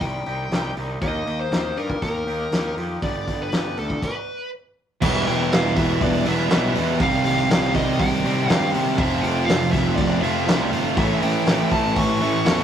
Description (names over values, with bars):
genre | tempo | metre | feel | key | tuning
quiet-loud alternative rock | 121 BPM | 4/4 | straight | E phrygian from 5.0 s | A4 = 440 Hz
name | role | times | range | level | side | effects
smooth overdriven lead guitar | melody | 0.0-12.6 s | A4 to C#6 | -27 LUFS | equal | none
twangy electric guitar | arpeggios | 0.0-4.0 s | G2 to G4 | -32 LUFS | left 2 dB | none
fuzz picked electric bass | bass | 0.0-12.6 s | E1 to C3 | -26 LUFS | equal | overdrive
loose indie drum kit | drums | 0.0-12.6 s | crash cymbal, hi-hat, kick drum, snare drum | -24 LUFS | equal | none
cranked stack guitar | riff | 5.0-12.6 s | E2 to C4 | -26 LUFS | left 1 dB | overdrive
thick fuzz guitar | riff | 5.0-12.6 s | A2 to G4 | -27 LUFS | left 6 dB | distortion
thick fuzz guitar | riff | 5.0-12.6 s | A2 to G4 | -24 LUFS | right 6 dB | distortion
room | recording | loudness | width
moderate studio reverb, RT60 0.6 s | rough rehearsal-room recording | -19 LUFS | side -9 dB against mid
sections
0.0-5.0 A section; 5.0-12.6 B section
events
stop 4.0-5.0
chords
0.0 Cm; 1.0 D#; 3.0 G; 5.0 Em; 7.0 Cm; 9.0 F; 11.0 A